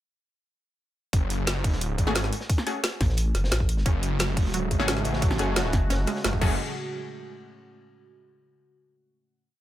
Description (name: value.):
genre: dark technical drum and bass.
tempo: 176 BPM.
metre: 4/4.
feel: straight.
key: F# minor.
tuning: A4 = 442 Hz.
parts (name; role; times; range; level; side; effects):
wide detuned saw bass; bass; 1.1-6.6 s; F#1 to A1; -28 LUFS; equal; chorus.
crunchy breakbeat drum kit; drums; 1.1-6.3 s; hi-hat, snare drum; -38 LUFS; equal; high-pass filter on hats, high-pass filter on snare, high-pass filter on room.
drum and bass drum kit; drums; 1.1-6.5 s; crash cymbal, hi-hat, snare drum; -29 LUFS; equal; none.
electronic kick drum; drums; 1.1-6.5 s; none; -24 LUFS; equal; none.
orchestra-hit-like synth stab; stabs; 2.1-6.5 s; A3 to G#4; -32 LUFS; left 2 dB; built-in reverb, cassette tape, digital delay.
vowel-sweep wobble bass; bass; 3.0-6.1 s; F#1 to A1; -24 LUFS; equal; chorus.
sweeping resonant pad; sustained chords; 4.0-6.6 s; C#3 to F#4; -34 LUFS; right 1 dB; chorus, phaser, sidechain pumping.
wide unison pluck; arpeggios; 3.9-6.6 s; F#3 to C#4; -34 LUFS; right 4 dB; sidechain pumping, digital delay.
room: digital ambience.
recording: none.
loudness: -23 LUFS.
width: side -13 dB against mid.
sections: 1.1-6.6 drop; 6.6-8.0 final hit.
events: drop 1.1-6.6.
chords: 1.1 F#madd9; 6.6 N.C..